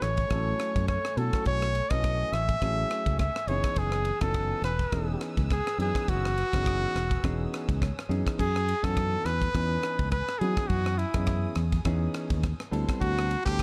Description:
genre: electric jazz fusion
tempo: 104 BPM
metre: 4/4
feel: swing 55% on 16ths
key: F# minor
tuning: A4 = 440 Hz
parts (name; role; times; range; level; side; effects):
- bright trumpet; melody; 0.0-13.6 s; E4 to E5; -32 LUFS; equal; none
- clear grand piano; accompaniment; 0.0-13.6 s; E3 to D#5; -38 LUFS; equal; none
- rich studio string section; sustained chords; 0.0-13.6 s; A3 to E6; -47 LUFS; equal; none
- fingered electric bass; bass; 0.0-13.6 s; E1 to F#3; -32 LUFS; equal; none
- crisp fusion drum kit; drums; 0.0-13.6 s; crash cymbal, kick drum, ride cymbal, rim click; -34 LUFS; equal; none
room: light reverb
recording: dark, warm production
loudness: -28 LUFS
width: mono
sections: 0.0-8.4 A section; 8.4-13.6 A section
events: grand piano fill 7.5-8.4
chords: 0.0 B13sus4; 3.5 F#13sus4; 12.7 D13sus4

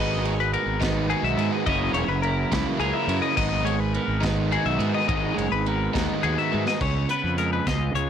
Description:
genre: math rock and midwest emo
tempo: 70 BPM (dotted quarters)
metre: 6/8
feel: straight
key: G# minor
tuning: A4 = 440 Hz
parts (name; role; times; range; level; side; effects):
- twelve-string electric guitar; accompaniment; 0.0-8.1 s; G#2 to B4; -28 LUFS; right 8 dB; spring reverb
- twelve-string electric guitar; arpeggios; 0.0-8.1 s; G#4 to E5; -27 LUFS; left 9 dB; none
- overdriven electric guitar; riff; 0.0-6.8 s; C#3 to E4; -28 LUFS; equal; none
- fuzz fingered electric bass; bass; 0.0-8.1 s; E1 to G#2; -27 LUFS; equal; overdrive
- modern studio drum kit; drums; 0.3-8.1 s; crash cymbal, hi-hat, kick drum, ride cymbal, snare drum, toms; -32 LUFS; equal; none
room: light reverb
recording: blown-out, overdriven recording, overdrive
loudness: -21 LUFS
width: side -8 dB against mid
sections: 0.0-6.8 A section; 6.8-8.1 B section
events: drum fill 6.5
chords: 0.0 G#m7; 1.7 F#7; 3.4 G#m7; 6.8 C#7

